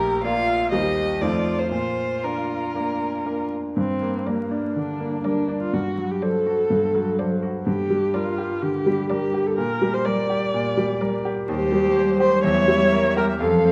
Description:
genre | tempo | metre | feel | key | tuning
quick classical-period movement for piano quartet | 125 BPM | 4/4 | rubato | Bb major, G minor from 3.8 s | A4 = 440 Hz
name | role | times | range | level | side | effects
warm violin | melody | 0.0-13.7 s | Bb4 to F5 | -30 LUFS | equal | none
warm cello | second line | 0.0-13.7 s | F3 to G4 | -30 LUFS | equal | none
bright grand piano | accompaniment | 0.0-13.7 s | Bb1 to D5 | -26 LUFS | equal | none
warm viola | accompaniment | 3.8-13.7 s | Bb3 to D5 | -25 LUFS | equal | none
room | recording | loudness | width
wet recital hall reverb, RT60 1.4 s | dark, warm production, vinyl crackle | -22 LUFS | mono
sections
0.0-3.8 A section; 3.8-13.7 B section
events
none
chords
0.0 Bb; 0.7 Cm/Eb; 1.2 F7; 1.7 Bb; 3.8 Gm; 5.7 D7/G; 7.7 Gm; 9.6 Gm/Bb; 11.5 Cm/Eb; 12.4 Edim7

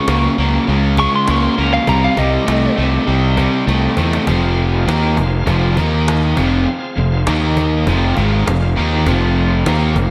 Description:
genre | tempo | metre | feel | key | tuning
classic rock | 100 BPM | 4/4 | straight | F minor | A4 = 439 Hz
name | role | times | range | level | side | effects
lightly driven lead guitar | melody | 0.0-2.8 s | Eb5 to Db6 | -21 LUFS | equal | slapback echo
bright tonewheel organ | sustained chords | 0.0-10.1 s | C4 to F5 | -30 LUFS | equal | none
crunchy overdriven guitar | riff | 0.0-10.1 s | F2 to Eb4 | -24 LUFS | equal | slapback echo
crunchy overdriven guitar | riff | 0.0-10.1 s | F2 to Eb4 | -21 LUFS | equal | slapback echo
fuzz fingered electric bass | bass | 0.1-10.1 s | F1 to E2 | -19 LUFS | equal | overdrive
cajon | drums | 0.1-10.1 s | none | -27 LUFS | equal | slapback echo
room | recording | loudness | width
moderate lush hall reverb, RT60 1.6 s, digital ambience | big arena sound | -15 LUFS | mono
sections
0.0-4.3 A section; 4.3-10.1 B section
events
lead electric guitar solo 0.0-4.3; drum fill 3.7-4.3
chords
0.0 Db; 1.9 Cm; 4.3 Fm; 5.8 Eb5; 6.4 Fm; 7.3 Eb5; 7.9 Fm

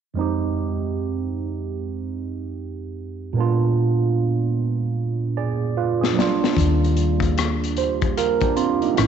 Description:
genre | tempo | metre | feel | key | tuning
R&B, neo-soul | 75 BPM | 4/4 | swing 62% on 16ths | F dorian | A4 = 439 Hz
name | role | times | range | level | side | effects
mellow tine electric piano | accompaniment | 0.1-9.1 s | F2 to D5 | -21 LUFS | right 5 dB | overdrive, phaser
crunchy breakbeat drum kit | drums | 6.0-9.1 s | hi-hat, kick drum, rim click, snare drum | -24 LUFS | left 6 dB | none
hollow-body short-scale fingered electric bass | bass | 6.6-9.1 s | A1 to Eb2 | -22 LUFS | left 3 dB | none
room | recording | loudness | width
wet echo chamber reverb, RT60 2.4 s | 1960s-style stereo, nothing above 8.0 kHz | -20 LUFS | side -8 dB against mid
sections
0.2-9.1 A section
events
drum fill 5.8-6.6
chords
0.2 Fm9; 3.4 Bb7b9; 6.2 Ebmaj7

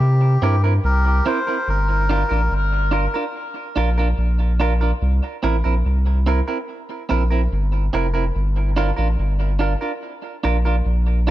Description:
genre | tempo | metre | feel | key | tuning
dub reggae | 72 BPM | 4/4 | straight | G dorian | A4 = 441 Hz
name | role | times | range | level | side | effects
melodica | melody | 0.0-2.5 s | G4 to C5 | -24 LUFS | left 1 dB | tape echo
warm sub bass | bass | 0.0-11.3 s | F1 to C3 | -18 LUFS | equal | none
clean electric guitar | accompaniment | 0.4-11.3 s | C4 to Bb4 | -24 LUFS | right 4 dB | tape echo
room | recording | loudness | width
light reverb | echo-heavy mix | -17 LUFS | side -14 dB against mid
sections
0.0-1.7 A section; 1.7-11.3 B section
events
break 1.7-11.3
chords
0.0 C7; 1.7 Gm7; 5.0 C7; 8.3 Gm7

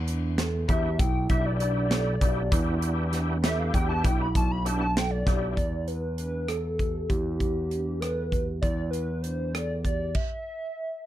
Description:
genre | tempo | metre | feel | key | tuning
progressive instrumental, band music in an uneven meter | 197 BPM (eighths) | 5/8 | straight | E minor | A4 = 435 Hz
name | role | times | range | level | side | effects
overdriven picked electric bass | bass | 0.0-10.1 s | B1 to E2 | -29 LUFS | equal | none
vibraphone with medium mallets | arpeggios | 0.1-10.1 s | D4 to A4 | -35 LUFS | right 5 dB | none
modern studio drum kit | drums | 0.1-10.3 s | crash cymbal, hi-hat, kick drum, rim click, snare drum | -28 LUFS | equal | none
hollow square lead | melody | 0.7-11.1 s | G4 to B5 | -32 LUFS | left 1 dB | chorus
overdriven tonewheel organ | accompaniment | 0.7-5.6 s | B3 to G4 | -33 LUFS | left 1 dB | chorus vibrato, fast rotary speaker
room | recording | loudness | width
little or no reverb | dark, warm production | -24 LUFS | side -13 dB against mid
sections
0.0-5.6 A section; 5.6-11.1 B section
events
analog synth lead solo 0.0-5.6; stop 10.2-11.1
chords
0.0 Em7; 5.6 E7(no3)

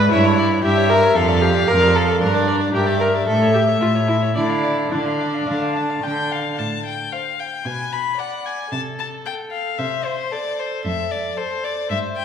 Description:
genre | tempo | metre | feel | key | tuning
quick classical-period movement for string quartet | 113 BPM | 4/4 | rubato | D minor, A minor from 6.6 s | A4 = 441 Hz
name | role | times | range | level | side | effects
rich violin | melody | 0.0-12.2 s | Bb4 to B5 | -25 LUFS | left 5 dB | none
dark violin | second line | 0.0-11.8 s | A4 to A5 | -24 LUFS | left 3 dB | none
rich viola | accompaniment | 0.0-12.2 s | D4 to D5 | -21 LUFS | right 1 dB | none
rich cello | bass | 0.0-12.2 s | F2 to D3 | -21 LUFS | right 2 dB | none
room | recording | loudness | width
wet recital hall reverb, RT60 1.5 s | heard from further back in the room | -17 LUFS | side -8 dB against mid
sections
0.0-6.6 A section; 6.6-12.2 B section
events
none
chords
0.1 Gdim7; 1.2 Dm/F; 2.2 Gm; 3.3 A; 4.4 Dm; 6.6 Am; 7.7 Bm6; 8.7 Am/C; 10.9 F

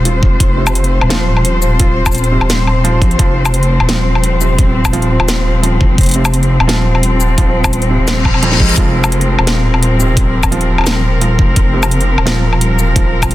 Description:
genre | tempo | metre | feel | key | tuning
half-time drum and bass | 172 BPM | 4/4 | half-time | unclear | A4 = 439 Hz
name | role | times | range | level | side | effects
rich symphonic cello section | sustained chords | 0.0-13.3 s | F3 to C5 | -18 LUFS | left 2 dB | vintage 12-bit sampler grit, sidechain pumping
felt-muted upright piano | arpeggios | 0.0-13.3 s | F2 to F4 | -20 LUFS | right 4 dB | dub echo
deep soft wobble bass | bass | 0.0-13.3 s | Eb1 to Bb1 | -13 LUFS | equal | chorus
drum and bass drum kit | drums | 0.1-13.3 s | hi-hat, shaker, snare drum, woodblock | -17 LUFS | left 2 dB | none
electronic kick drum | drums | 0.2-13.3 s | none | -12 LUFS | equal | none
reverse cymbal | sound effects | 8.2-8.8 s | none | -18 LUFS | left 4 dB | none
room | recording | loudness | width
light reverb, digital ambience | dense, heavily limited modern master | -10 LUFS | side -15 dB against mid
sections
0.0-13.3 A section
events
reverse cymbal 8.2-8.8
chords
0.0 F5

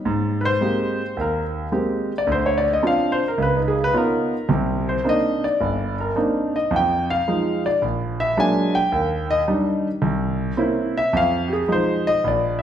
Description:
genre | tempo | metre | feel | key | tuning
solo jazz | 108 BPM | 4/4 | swing 67% on 8ths | unclear | A4 = 437 Hz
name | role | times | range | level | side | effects
warm concert grand piano | solo | 0.1-12.6 s | G1 to Ab5 | -19 LUFS | equal | none
room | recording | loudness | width
wet recital hall reverb, RT60 1.4 s | recorded in a church or concert hall | -19 LUFS | side -9 dB against mid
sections
0.0-12.6 A section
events
grand piano solo 0.0-12.6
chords
0.1 Abmaj9; 2.3 Dm7; 3.4 Db9; 4.5 Cm9; 6.7 Fm7; 7.8 Bbaug7; 8.9 Ebmaj7; 10.0 C7b9; 11.1 Fm7

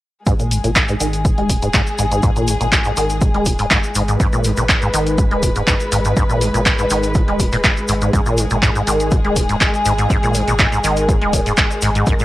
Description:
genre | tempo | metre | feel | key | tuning
acid house | 122 BPM | 4/4 | straight | G# minor | A4 = 440 Hz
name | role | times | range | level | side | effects
warm studio string section | sustained chords | 0.3-12.2 s | G#3 to B4 | -23 LUFS | left 1 dB | sidechain pumping
deep acid bass | riff | 0.3-12.2 s | G#2 to G#3 | -19 LUFS | equal | tube saturation, ensemble chorus, sidechain pumping, tape echo
warm sub bass | bass | 0.3-12.2 s | D#1 to G#1 | -24 LUFS | equal | sidechain pumping
electronic kick drum | drums | 0.3-12.2 s | none | -17 LUFS | equal | none
punchy analog drum machine | drums | 0.3-12.2 s | handclaps, hi-hat | -19 LUFS | equal | none
tube shaker | percussion | 0.3-12.2 s | none | -29 LUFS | left 1 dB | none
room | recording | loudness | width
light reverb | dry, gritty hardware recording, cassette tape | -14 LUFS | side -16 dB against mid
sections
0.3-12.2 A section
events
none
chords
0.3 G#m

